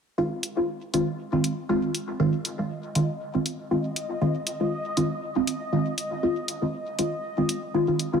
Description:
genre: dub techno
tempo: 119 BPM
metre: 4/4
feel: swing 55% on 16ths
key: F minor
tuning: A4 = 439 Hz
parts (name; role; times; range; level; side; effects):
- filtered dub chord stab; stabs; 0.2-8.2 s; Eb3 to F4; -25 LUFS; equal; phaser, dub echo
- bubbling stepped-filter texture; texture; 2.5-8.2 s; Eb5; -35 LUFS; equal; chorus, built-in reverb
- electronic hi-hat; drums; 0.4-8.1 s; none; -29 LUFS; left 1 dB; none
room: moderate plate reverb, RT60 1.9 s, digital ambience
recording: echo-heavy mix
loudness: -24 LUFS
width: side -7 dB against mid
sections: 0.2-8.2 A section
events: none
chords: 0.2 Fm7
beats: | 0.18 0.69 1.19 1.69 | 2.20 2.70 3.21 3.71 | 4.21 4.72 5.22 5.73 | 6.23 6.74 7.24 7.74

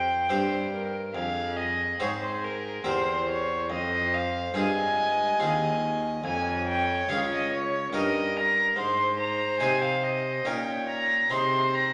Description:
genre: classical, baroque-style sonata movement with continuo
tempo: 71 BPM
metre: 3/4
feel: straight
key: F minor, Ab major from 6.2 s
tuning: A4 = 442 Hz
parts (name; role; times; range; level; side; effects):
- dark violin; melody; 0.0-11.9 s; Bb4 to C6; -29 LUFS; equal; none
- rich violin; second line; 0.0-11.9 s; Ab4 to Eb5; -34 LUFS; equal; none
- harpsichord; accompaniment; 0.0-11.9 s; Db2 to C5; -34 LUFS; equal; none
- dark cello; bass; 0.0-11.9 s; Db2 to C3; -37 LUFS; equal; none
room: wet recital hall reverb, RT60 1.5 s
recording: none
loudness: -27 LUFS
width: mono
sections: 0.0-11.9 A section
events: none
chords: 0.0 C5; 1.1 Fm; 2.9 C7/E; 3.7 Fm; 6.2 Db/F; 7.9 Eb7/G; 8.8 Ab; 10.5 Eb7/Bb; 11.3 Ab/C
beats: 0.30 | 1.15 2.00 2.85 | 3.70 4.55 5.40 | 6.24 7.09 7.93 | 8.77 9.61 10.46 | 11.30

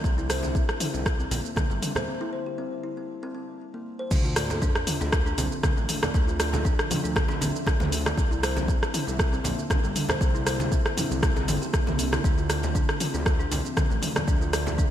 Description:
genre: afro house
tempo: 118 BPM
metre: 4/4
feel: swing 54% on 16ths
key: D minor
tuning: A4 = 439 Hz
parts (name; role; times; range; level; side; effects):
- ethereal airy pad; sustained chords; 0.0-14.9 s; D3 to E5; -36 LUFS; right 1 dB; ensemble chorus, built-in reverb, phaser, sidechain pumping
- kalimba; arpeggios; 0.0-14.9 s; G3 to D5; -34 LUFS; left 1 dB; sidechain pumping, ping-pong delay
- smooth synth bass; bass; 0.0-14.9 s; G1 to D2; -30 LUFS; equal; tube saturation, sidechain pumping
- deep house drum kit; drums; 0.0-14.9 s; crash cymbal, hi-hat, rim click, shaker, toms; -28 LUFS; equal; gated reverb
- electronic kick drum; drums; 0.0-14.9 s; none; -25 LUFS; equal; none
- bongos; percussion; 0.4-14.8 s; none; -39 LUFS; left 4 dB; none
- congas; percussion; 0.4-14.8 s; none; -34 LUFS; right 2 dB; none
- sub drop; sound effects; 4.1-6.1 s; none; -36 LUFS; equal; none
room: light reverb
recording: bright 1980s-style digital production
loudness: -23 LUFS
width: side -11 dB against mid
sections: 0.0-4.1 A section; 4.1-14.9 B section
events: break 2.1-4.1; drop 4.1-14.9; impact 4.1-6.1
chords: 0.0 C9; 4.1 Dm9; 8.2 C9; 12.2 Dm9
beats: | 0.04 0.55 1.06 1.57 | 2.08 2.59 3.09 3.60 | 4.11 4.62 5.13 5.64 | 6.14 6.65 7.16 7.67 | 8.18 8.69 9.20 9.70 | 10.21 10.72 11.23 11.74 | 12.25 12.76 13.26 13.77 | 14.28 14.79

